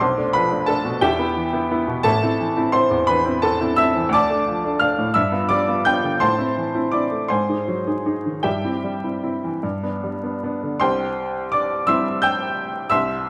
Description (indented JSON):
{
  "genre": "classical, romantic character piece for solo piano",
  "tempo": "50-60 BPM (dotted quarters)",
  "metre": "6/8",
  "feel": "rubato",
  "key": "C major",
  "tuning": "A4 = 440 Hz",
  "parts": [
    { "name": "bright upright piano", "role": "solo", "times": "0.0-13.3 s", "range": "A1 to G6", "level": "-21 LUFS", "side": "equal", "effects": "none" }
  ],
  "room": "moderate concert hall reverb, RT60 1.7 s",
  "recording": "vinyl crackle",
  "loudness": "-21 LUFS",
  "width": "mono",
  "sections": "0.0-10.8 A section; 10.8-13.3 B section",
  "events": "none",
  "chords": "0.0 Bm7b5; 1.0 Em; 2.1 Am; 4.1 Dm; 5.2 G7; 6.2 Am; 7.3 Ab7; 8.5 C/G; 9.6 G; 10.8 C"
}